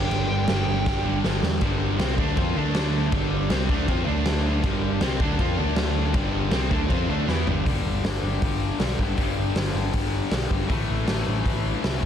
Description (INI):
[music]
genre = punk rock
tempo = 159 BPM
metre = 4/4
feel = straight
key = unclear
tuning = A4 = 440 Hz
[part]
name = bluesy overdriven lead guitar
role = melody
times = 0.0-1.2 s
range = G5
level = -30 LUFS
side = right 4 dB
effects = distortion
[part]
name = raw garage guitar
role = riff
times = 0.0-12.1 s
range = G2 to F4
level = -30 LUFS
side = left 16 dB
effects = overdrive
[part]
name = sludgy distorted guitar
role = riff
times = 0.0-7.7 s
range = G2 to F4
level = -29 LUFS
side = right 15 dB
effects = overdrive
[part]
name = tight distorted guitar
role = riff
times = 0.0-12.1 s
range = G2 to F4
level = -30 LUFS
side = equal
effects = distortion
[part]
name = overdriven picked electric bass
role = bass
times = 0.0-12.1 s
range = G1 to F2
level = -27 LUFS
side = equal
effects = none
[part]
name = raw garage drum kit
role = drums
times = 0.1-12.1 s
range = crash cymbal, hi-hat, kick drum, snare drum, toms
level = -26 LUFS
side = equal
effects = none
[sound]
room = little or no reverb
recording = dense, heavily limited modern master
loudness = -21 LUFS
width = side -9 dB against mid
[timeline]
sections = 0.0-1.6 A section; 1.6-7.7 B section; 7.7-12.1 C section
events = drum fill 0.9-1.6, 7.3-7.7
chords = 0.0 G5; 2.6 D5; 3.1 G5; 4.1 D5; 4.6 G5; 5.6 D5; 6.1 G; 7.7 G5; 10.7 A5